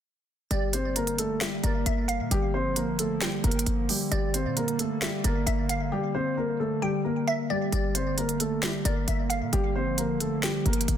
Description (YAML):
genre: hip hop, trap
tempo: 133 BPM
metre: 4/4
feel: half-time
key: G dorian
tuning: A4 = 440 Hz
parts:
  - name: dark concert grand piano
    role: melody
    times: 0.5-11.0 s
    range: G3 to C5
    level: -29 LUFS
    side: left 1 dB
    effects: tape echo
  - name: glassy wavetable pluck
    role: second line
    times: 0.5-10.9 s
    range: D5 to G5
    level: -34 LUFS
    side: equal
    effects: chorus, tape echo
  - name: warbly tape-like pad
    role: sustained chords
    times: 0.8-11.0 s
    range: D3 to Bb3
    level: -32 LUFS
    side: right 3 dB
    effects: chorus, built-in reverb
  - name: short 808-style bass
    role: bass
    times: 0.5-11.0 s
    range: G1 to Bb2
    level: -29 LUFS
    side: equal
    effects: none
  - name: trap drum kit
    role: drums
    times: 0.5-11.0 s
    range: finger snaps, hi-hat, snare drum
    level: -30 LUFS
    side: right 2 dB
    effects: none
room: little or no reverb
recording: dense, heavily limited modern master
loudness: -25 LUFS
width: side -9 dB against mid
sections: 0.5-11.0 A section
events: drums muted 5.9-7.7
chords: 0.5 Gm